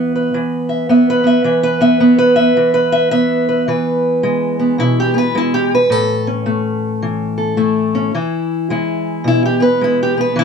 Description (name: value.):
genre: acoustic country blues, solo or duo.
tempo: 108 BPM.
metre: 4/4.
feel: swing 63% on 8ths.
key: E major.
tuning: A4 = 440 Hz.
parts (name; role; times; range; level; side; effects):
fingerpicked steel-string acoustic guitar; solo; 0.0-10.4 s; A2 to E5; -12 LUFS; equal; none.
room: light reverb.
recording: close, detailed microphones.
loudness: -12 LUFS.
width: side -6 dB against mid.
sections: 0.0-3.7 A section; 3.7-10.4 B section.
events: steel-string acoustic guitar solo 3.7-10.4.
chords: 0.0 E5; 3.7 E; 5.9 A; 8.1 E.